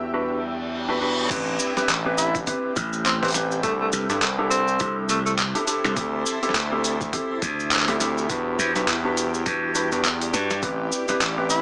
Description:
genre	glitch hop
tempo	103 BPM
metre	4/4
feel	swing 58% on 16ths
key	A dorian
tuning	A4 = 442 Hz
part	gritty driven synth bass	bass	0.0-11.6 s	A1 to G2	-31 LUFS	equal	none
part	granular cloud pad	texture	0.0-11.6 s	C4 to A5	-35 LUFS	equal	built-in reverb, sidechain pumping
part	mellow electric guitar	stabs	0.1-11.6 s	C4 to B4	-29 LUFS	equal	vintage 12-bit sampler grit, sidechain pumping, tape echo
part	reverse cymbal and sub drop	sound effects	0.4-3.6 s	none	-32 LUFS	equal	none
part	boom bap sampler-style drum kit	drums	1.3-11.6 s	crash cymbal, handclaps, hi-hat, snare drum	-28 LUFS	equal	overdrive, low-pass filter on hats, low-pass filter on cymbals, low-pass filter on snare
part	electronic kick drum	drums	1.3-10.8 s	none	-37 LUFS	equal	overdrive
part	cabasa	percussion	1.3-11.6 s	none	-34 LUFS	equal	none
part	warm tenor saxophone	melody	2.2-5.3, 11.5-11.6 s	A3 to E4	-29 LUFS	equal	tape echo
part	slap bass	bass	2.8-10.6 s	A1 to G2	-27 LUFS	equal	tube saturation
room	light reverb, digital ambience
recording	small speaker sound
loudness	-23 LUFS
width	mono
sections	0.0-1.3 A section; 1.3-11.6 B section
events	reverse cymbal 0.4-1.3; drop 1.3-11.6; impact 1.3-3.6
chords	0.0 Em7; 1.3 Am9; 3.6 C6; 6.0 D9sus4; 8.3 Em7; 10.6 Am9

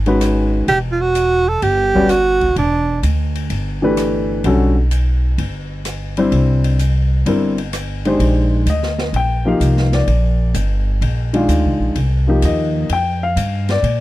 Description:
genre	modal jazz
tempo	128 BPM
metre	4/4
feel	swing 68% on 8ths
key	F dorian from 8.2 s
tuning	A4 = 440 Hz
part	upright bass	bass	0.0-14.0 s	E1 to Bb2	-17 LUFS	equal	none
part	warm upright piano	accompaniment	0.1-14.0 s	D3 to G5	-17 LUFS	left 2 dB	none
part	open jazz drum kit	drums	0.1-14.0 s	hi-hat, kick drum, ride cymbal, rim click, snare drum	-29 LUFS	left 1 dB	none
part	breathy tenor saxophone	melody	0.7-3.0 s	D4 to A4	-14 LUFS	right 3 dB	none
room	little or no reverb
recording	dry, close 1970s-style studio recording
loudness	-14 LUFS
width	side -16 dB against mid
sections	0.0-8.2 A section; 8.2-14.0 B section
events	none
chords	0.0 C#7sus2; 0.7 Em7; 6.3 C9; 8.2 F13sus4

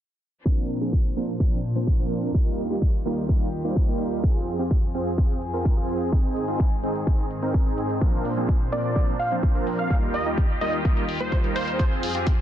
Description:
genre	EDM, festival progressive house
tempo	127 BPM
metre	4/4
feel	straight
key	Eb major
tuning	A4 = 441 Hz
part	clear studio string section	sustained chords	0.5-12.4 s	Eb2 to C5	-32 LUFS	left 1 dB	vintage 12-bit sampler grit, sidechain pumping, low-pass filter
part	supersaw chords	riff	0.5-12.3 s	F3 to C5	-27 LUFS	right 2 dB	sidechain pumping, low-pass filter, digital delay
part	electronic hi-hat	drums	0.5-12.4 s	none	-38 LUFS	left 2 dB	low-pass filter on hats
part	electronic kick drum	drums	0.5-12.4 s	none	-22 LUFS	equal	none
part	plucky unison lead	melody	8.7-11.8 s	C5 to F5	-28 LUFS	right 1 dB	digital delay
room	light reverb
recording	dense, heavily limited modern master, low-pass filter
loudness	-21 LUFS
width	side -11 dB against mid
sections	0.5-12.4 A section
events	filter sweep on drum 0.5-12.4; filter sweep on string section 0.5-12.4; filter sweep 0.5-12.4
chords	0.5 Bbadd9; 2.3 Ebadd9; 4.2 Fm; 6.1 Ab; 8.0 Bbadd9; 9.9 Ebadd9; 11.8 Fm

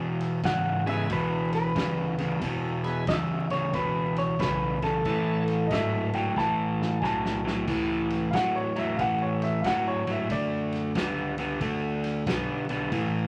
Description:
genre	electric blues shuffle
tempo	91 BPM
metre	4/4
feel	swing 65% on 8ths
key	A major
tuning	A4 = 441 Hz
part	overdriven semi-hollow guitar	riff	0.0-13.3 s	E2 to B3	-30 LUFS	equal	none
part	upright bass	bass	0.0-13.3 s	G#1 to B2	-40 LUFS	equal	none
part	natural country drum kit	drums	0.2-13.1 s	crash cymbal, kick drum, ride cymbal, snare drum	-37 LUFS	equal	none
part	electric guitar through a small old amp	melody	0.5-7.0 s	A4 to F#5	-33 LUFS	equal	none
part	bright tonewheel organ	accompaniment	0.9-5.4 s	G#3 to A4	-37 LUFS	equal	overdrive, slow rotary speaker
part	clear upright piano	second line	5.7-11.6 s	C#5 to A5	-32 LUFS	equal	none
room	light reverb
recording	vinyl crackle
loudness	-27 LUFS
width	mono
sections	0.0-7.7 A section; 7.7-13.3 B section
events	drum fill 6.4-7.7; upright piano solo 7.7-13.3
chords	0.0 E; 5.0 A; 10.3 D

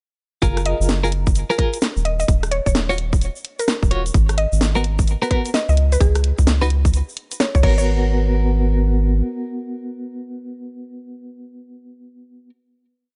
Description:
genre	UK garage, two-step garage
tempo	129 BPM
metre	4/4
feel	swing 64% on 16ths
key	G# dorian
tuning	A4 = 440 Hz
part	clean electric guitar	stabs	0.4-12.5 s	B3 to C#5	-27 LUFS	equal	tremolo, delay
part	soft dub sub bass	bass	0.4-9.2 s	D#1 to C#2	-20 LUFS	equal	none
part	electronic kick drum	drums	0.4-7.8 s	none	-20 LUFS	equal	none
part	garage drum kit	drums	0.4-7.8 s	crash cymbal, hi-hat, rim click, snare drum	-25 LUFS	equal	none
part	egg shaker	percussion	0.4-7.8 s	none	-36 LUFS	equal	none
part	mallet-like synth pluck	melody	0.7-7.8 s	G#4 to D#5	-28 LUFS	equal	chorus, delay
room	digital ambience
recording	nothing above 10.5 kHz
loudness	-19 LUFS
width	mono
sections	0.4-7.9 drop; 7.9-11.6 final note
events	drop 0.4-7.9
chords	0.4 F#maj7; 2.1 N.C.; 4.1 G#m7; 5.8 C#5; 7.6 G#m7

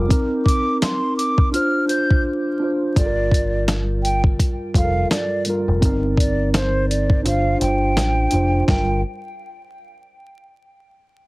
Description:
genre	hip hop, boom-bap hip-hop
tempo	84 BPM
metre	4/4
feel	swing 59% on 16ths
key	G minor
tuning	A4 = 440 Hz
part	mellow tine electric piano	accompaniment	0.0-9.0 s	G2 to C5	-22 LUFS	equal	medium stereo tremolo, cassette tape, high-pass filter, low-pass filter
part	deep dub picked electric bass	bass	0.0-9.0 s	F1 to A1	-21 LUFS	equal	none
part	boom bap sampler-style drum kit	drums	0.1-8.9 s	hi-hat, kick drum, snare drum	-18 LUFS	equal	none
part	breathy mellow silver concert flute	melody	0.5-9.0 s	C5 to G6	-24 LUFS	right 1 dB	high-pass filter, low-pass filter, plate reverb, tape echo
room	light reverb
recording	heavily compressed radio sound, vinyl crackle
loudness	-17 LUFS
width	side -22 dB against mid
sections	0.0-3.0 A section; 3.0-8.7 B section; 8.7-11.3 C section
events	break 2.2-3.0; kick muted 7.2-8.7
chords	0.1 Cm7; 1.5 Dm7; 3.0 Gm7; 5.8 Cm7/G; 7.2 Dm7/G; 8.7 Gm7

